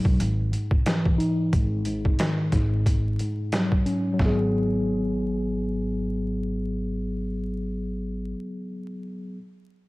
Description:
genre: hip hop, boom-bap hip-hop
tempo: 90 BPM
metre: 4/4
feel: swing 56% on 16ths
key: G# minor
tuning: A4 = 444 Hz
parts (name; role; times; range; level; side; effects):
- mellow tine electric piano; accompaniment; 0.0-9.4 s; G#2 to G#4; -26 LUFS; left 1 dB; medium stereo tremolo, cassette tape, high-pass filter, low-pass filter
- upright bass; bass; 0.1-8.3 s; G#1 to B1; -28 LUFS; equal; none
- trip hop sampler-style drum kit; drums; 0.1-4.4 s; hi-hat, kick drum, snare drum; -24 LUFS; equal; none
room: moderate plate reverb, RT60 2.3 s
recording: vinyl crackle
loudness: -23 LUFS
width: side -21 dB against mid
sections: 0.0-4.2 A section; 4.2-6.9 B section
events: filter sweep on tine electric piano 0.0-4.2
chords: 0.2 Emaj7/G#; 1.5 G#5; 2.5 F#5/G#; 4.2 G#m7

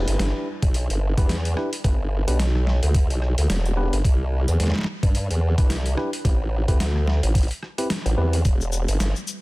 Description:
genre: glitch hop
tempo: 109 BPM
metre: 4/4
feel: swing 57% on 16ths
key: E minor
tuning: A4 = 440 Hz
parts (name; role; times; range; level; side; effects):
- tine electric piano; stabs; 0.0-8.4 s; B3 to B4; -30 LUFS; equal; sidechain pumping, digital delay
- formant-sweep wobble bass; bass; 0.0-9.1 s; E1 to G2; -21 LUFS; equal; chorus, overdrive
- boom bap sampler-style drum kit; drums; 0.1-9.4 s; hi-hat, rim click, shaker, snare drum; -29 LUFS; equal; overdrive
- electronic kick drum; drums; 0.6-8.6 s; none; -19 LUFS; equal; overdrive
room: little or no reverb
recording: dense, heavily limited modern master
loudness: -20 LUFS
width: side -21 dB against mid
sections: 0.0-9.4 A section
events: none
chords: 0.0 Em7; 4.0 Cmaj7; 6.2 Am7; 8.4 Em

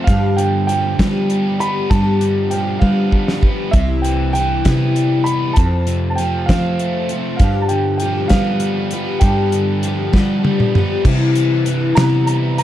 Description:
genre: folk rock and heartland rock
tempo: 66 BPM (dotted quarters)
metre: 6/8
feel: straight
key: G mixolydian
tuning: A4 = 441 Hz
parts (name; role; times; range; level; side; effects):
- warm grand piano; melody; 0.0-12.6 s; E5 to B5; -23 LUFS; right 3 dB; slapback echo
- picked twelve-string acoustic guitar; accompaniment; 0.0-12.6 s; F2 to G4; -21 LUFS; left 5 dB; none
- crunchy overdriven guitar; riff; 0.0-12.6 s; F2 to C4; -23 LUFS; right 2 dB; none
- fingered electric bass; bass; 0.0-12.6 s; C2 to G3; -19 LUFS; equal; none
- damped 70s drum kit; drums; 0.1-12.6 s; crash cymbal, hi-hat, kick drum, snare drum, toms; -17 LUFS; equal; none
- mellow tonewheel organ; sustained chords; 11.1-12.6 s; E4 to E5; -30 LUFS; right 2 dB; slow rotary speaker
room: small room ambience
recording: dark, warm production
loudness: -14 LUFS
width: side -12 dB against mid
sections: 0.0-11.1 A section; 11.1-12.6 B section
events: drum fill 2.8-3.8, 10.2-11.1; grand piano solo 11.1-12.6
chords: 0.1 G7; 3.8 Cmaj7; 5.6 F; 7.4 G7; 11.1 Cmaj7

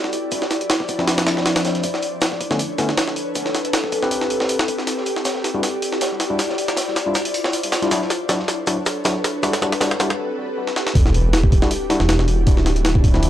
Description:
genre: drum and bass, jungle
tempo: 158 BPM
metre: 4/4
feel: swing 54% on 16ths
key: E minor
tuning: A4 = 440 Hz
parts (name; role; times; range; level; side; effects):
- ethereal airy pad; sustained chords; 0.0-13.3 s; F3 to D5; -24 LUFS; left 1 dB; ensemble chorus, built-in reverb, vintage 12-bit sampler grit
- jungle sampler-style drum kit; drums; 0.0-13.3 s; hi-hat, kick drum, snare drum; -20 LUFS; equal; high-pass filter on kick, high-pass filter on hats, high-pass filter on snare
- crunchy breakbeat drum kit; drums; 0.1-10.1 s; hi-hat, shaker, snare drum; -29 LUFS; right 1 dB; high-pass filter on hats, high-pass filter on snare, high-pass filter on perc, high-pass filter on room
- overdriven tine electric piano; stabs; 1.0-13.3 s; D3 to B4; -25 LUFS; left 2 dB; dub echo
- detuned saw bass; bass; 11.0-13.3 s; D1 to E1; -18 LUFS; equal; transformer saturation
- sub drop; sound effects; 11.0-12.5 s; none; -27 LUFS; equal; none
room: light reverb, studio ambience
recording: dry, gritty hardware recording, transformer saturation, cassette tape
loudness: -17 LUFS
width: side -12 dB against mid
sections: 0.0-10.9 A section; 10.9-13.3 B section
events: build-up 0.0-10.9; drum fill 4.9-10.2, 10.7; break 10.2-10.9; drop 10.9-13.3; impact 10.9-12.5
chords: 0.3 Dm9; 1.8 Bm9; 3.4 Am9; 4.9 Em9; 6.4 Dm9; 7.9 Bm9; 9.4 Am9; 10.9 Em9; 12.5 Dm9

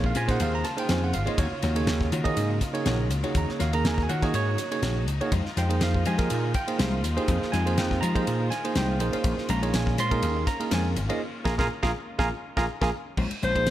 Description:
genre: electric jazz fusion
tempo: 122 BPM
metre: 4/4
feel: swing 55% on 16ths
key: Bb minor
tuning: A4 = 439 Hz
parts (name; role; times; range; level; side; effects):
- bell-like tine electric piano; accompaniment; 0.0-13.7 s; Bb3 to C6; -28 LUFS; right 4 dB; none
- rich studio string section; sustained chords; 0.0-13.1 s; C3 to Gb4; -36 LUFS; left 2 dB; none
- clean electric guitar; stabs; 0.0-13.6 s; Ab3 to Db5; -34 LUFS; left 4 dB; wide subtle chorus
- vintage slap bass; bass; 0.0-13.7 s; Ab1 to F3; -27 LUFS; left 1 dB; none
- damped 70s drum kit; drums; 0.0-13.7 s; crash cymbal, hi-hat, kick drum, ride cymbal, snare drum; -30 LUFS; left 1 dB; none
- warm soprano saxophone; melody; 13.4-13.7 s; C5; -23 LUFS; left 2 dB; none
room: light reverb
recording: none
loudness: -23 LUFS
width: side -13 dB against mid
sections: 0.0-13.2 A section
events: band accent 11.2-13.2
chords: 0.0 Bbm9; 1.4 Ebm9; 5.3 Fm9; 9.0 Bbm9

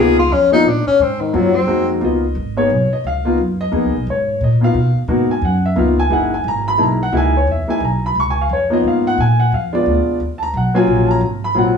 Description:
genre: jazz, small-group swing and bop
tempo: 176 BPM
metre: 3/4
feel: swing 62% on 8ths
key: Db mixolydian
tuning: A4 = 440 Hz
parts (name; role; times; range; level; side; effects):
- breathy tenor saxophone; melody; 0.0-1.9 s; Eb3 to Ab4; -14 LUFS; left 4 dB; none
- warm upright piano; accompaniment; 0.0-11.8 s; Gb3 to Db6; -16 LUFS; left 1 dB; none
- upright bass; bass; 0.0-11.8 s; Gb1 to Cb3; -19 LUFS; equal; none
room: wet studio reverb, RT60 0.8 s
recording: band playing live in one room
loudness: -14 LUFS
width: side -6 dB against mid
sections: 0.0-2.0 A section; 2.0-11.8 A section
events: tenor saxophone solo 0.0-2.0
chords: 0.0 Db13; 0.7 Bb; 1.0 Ab13; 2.0 Db13; 5.1 Abm7; 5.8 Db13; 6.1 Gb13; 8.2 Db13; 9.2 Bb7b9; 10.2 Ebm7; 11.2 Ab13

